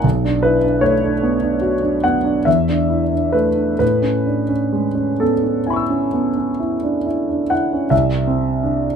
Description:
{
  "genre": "classical, impressionist solo piano",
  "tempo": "41-56 BPM (dotted quarters)",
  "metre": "9/8",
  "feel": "rubato",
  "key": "A major",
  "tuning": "A4 = 440 Hz",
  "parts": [
    { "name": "warm concert grand piano", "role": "solo", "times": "0.0-9.0 s", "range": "B1 to E6", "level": "-15 LUFS", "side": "equal", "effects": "none" }
  ],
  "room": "little or no reverb",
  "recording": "close, detailed microphones",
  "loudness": "-15 LUFS",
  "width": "side -7 dB against mid",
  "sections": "0.0-7.9 A section; 7.9-9.0 B section",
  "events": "none",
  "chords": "0.0 Bm9; 2.5 E7sus4; 3.8 Amaj9; 7.9 Cadd9"
}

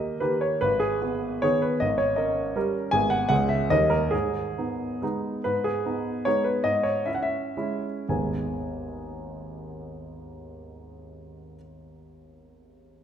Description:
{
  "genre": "classical, romantic triple-time dance for piano with dotted rhythms",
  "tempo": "107-169 BPM",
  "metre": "3/4",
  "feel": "rubato",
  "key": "G# minor",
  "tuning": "A4 = 441 Hz",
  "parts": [
    { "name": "clear concert grand piano", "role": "solo", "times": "0.0-13.0 s", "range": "G#1 to G#5", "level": "-24 LUFS", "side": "equal", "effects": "none" }
  ],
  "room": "wet recital hall reverb, RT60 1.8 s",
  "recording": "minimal, uncompressed stereo recording",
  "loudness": "-23 LUFS",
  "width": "side -9 dB against mid",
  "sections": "0.0-5.4 A section; 5.4-8.1 B section; 8.1-11.1 C section",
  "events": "slowing down 4.8-8.1",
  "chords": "0.0 D#; 0.6 G#m; 1.8 D#7/G#; 2.9 G#m; 3.3 C#m; 3.7 D#; 4.1 G#m; 6.6 C#m/G#; 8.1 G#m"
}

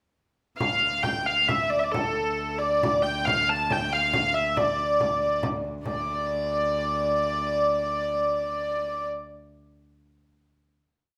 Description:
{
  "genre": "medieval dance",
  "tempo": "89-101 BPM (dotted quarters)",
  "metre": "6/8",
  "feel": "straight",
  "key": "D minor",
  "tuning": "A4 = 440 Hz",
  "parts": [
    { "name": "warm hurdy-gurdy", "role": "melody", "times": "0.6-9.1 s", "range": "A4 to A5", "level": "-26 LUFS", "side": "equal", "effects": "none" },
    { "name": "rich viola da gamba", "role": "drone", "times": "0.6-9.1 s", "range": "D2", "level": "-38 LUFS", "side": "equal", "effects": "none" },
    { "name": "frame drum", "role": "percussion", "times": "0.6-6.0 s", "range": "none", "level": "-34 LUFS", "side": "equal", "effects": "none" }
  ],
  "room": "wet large studio reverb, RT60 0.8 s",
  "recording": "band playing live in one room",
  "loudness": "-25 LUFS",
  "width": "mono",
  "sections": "0.6-5.8 A section; 5.8-8.3 final note",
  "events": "speeding up 0.6-8.3",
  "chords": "none"
}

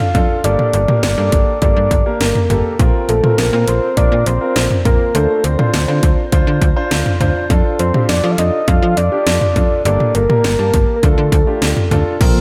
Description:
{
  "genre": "synth-pop",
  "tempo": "102 BPM",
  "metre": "4/4",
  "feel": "straight",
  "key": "G minor",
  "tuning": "A4 = 441 Hz",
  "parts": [
    { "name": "soft octave-layered synth lead", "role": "melody", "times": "0.0-11.9 s", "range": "A4 to F5", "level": "-20 LUFS", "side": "equal", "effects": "chorus, delay, shimmer reverb, slapback echo" },
    { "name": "warm concert grand piano", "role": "accompaniment", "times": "0.0-12.4 s", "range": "Bb3 to A5", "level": "-23 LUFS", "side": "equal", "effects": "shimmer reverb, slapback echo" },
    { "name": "house drum kit", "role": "drums", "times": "0.0-12.3 s", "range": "crash cymbal, hi-hat, kick drum, snare drum, toms", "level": "-18 LUFS", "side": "equal", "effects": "none" },
    { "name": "slap-like FM bass", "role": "bass", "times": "0.1-12.3 s", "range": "G1 to F3", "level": "-19 LUFS", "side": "equal", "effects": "none" },
    { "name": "string machine, cellos", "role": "sustained chords", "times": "12.2-12.4 s", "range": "C3 to F4", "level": "-20 LUFS", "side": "equal", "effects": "ensemble chorus" }
  ],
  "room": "moderate lush hall reverb, RT60 1.6 s",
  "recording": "big arena sound",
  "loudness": "-14 LUFS",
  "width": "mono",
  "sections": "0.0-12.2 A section",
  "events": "none",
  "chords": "0.4 Gmadd9; 2.8 Bbsus2; 5.1 Dm7; 7.5 F6; 9.9 Gmadd9; 11.0 Dm"
}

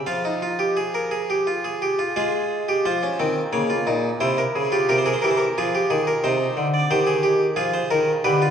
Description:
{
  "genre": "classical, baroque-style 3-part fugue for harpsichord",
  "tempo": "88 BPM",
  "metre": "3/4",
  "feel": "straight",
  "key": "F minor",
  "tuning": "A4 = 440 Hz",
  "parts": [
    { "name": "harpsichord", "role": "solo", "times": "0.0-8.5 s", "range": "Bb2 to F5", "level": "-19 LUFS", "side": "equal", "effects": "none" }
  ],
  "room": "wet scoring stage reverb, RT60 1.9 s",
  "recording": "worn, warbling old tape, cassette tape, warbly pitch drift",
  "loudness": "-19 LUFS",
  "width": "side -8 dB against mid",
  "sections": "0.0-2.2 A section; 2.2-8.5 B section",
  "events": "none",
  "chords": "0.1 Fm; 2.2 Fm/Ab; 3.5 Bbm/Db; 4.2 C7; 5.6 Fm; 6.2 Cm; 7.6 Fm"
}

